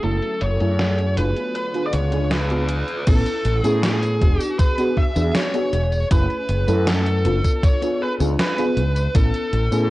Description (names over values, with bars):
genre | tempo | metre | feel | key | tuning
vaporwave | 79 BPM | 4/4 | straight | A major | A4 = 445 Hz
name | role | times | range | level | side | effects
biting lead guitar | melody | 0.0-9.9 s | G#4 to E5 | -25 LUFS | equal | overdrive, tape echo
FM electric piano with soft pad layer | accompaniment | 0.0-9.9 s | A3 to A4 | -24 LUFS | equal | tremolo, ensemble chorus
lush unison pad | sustained chords | 0.0-3.1 s | D3 to E#4 | -34 LUFS | equal | chorus, vintage 12-bit sampler grit
fretless electric bass | bass | 0.0-9.9 s | E1 to A2 | -20 LUFS | equal | tube saturation
gated 80s digital drum machine | drums | 0.0-9.9 s | crash cymbal, hi-hat, snare drum, tambourine | -26 LUFS | equal | gated reverb, gated reverb snare, studio reverb
electronic kick drum | drums | 3.1-9.3 s | none | -17 LUFS | equal | studio reverb
room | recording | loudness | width
little or no reverb | worn, warbling old tape, cassette tape, warbly pitch drift, low-pass filter | -17 LUFS | side -17 dB against mid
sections
0.0-3.1 A section; 3.1-9.9 B section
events
filter sweep 0.0-3.1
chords
0.0 F#m7; 1.6 C#7b9; 3.1 Amaj7; 4.2 E7; 6.1 F#m7; 7.6 C#7b9; 9.1 Amaj7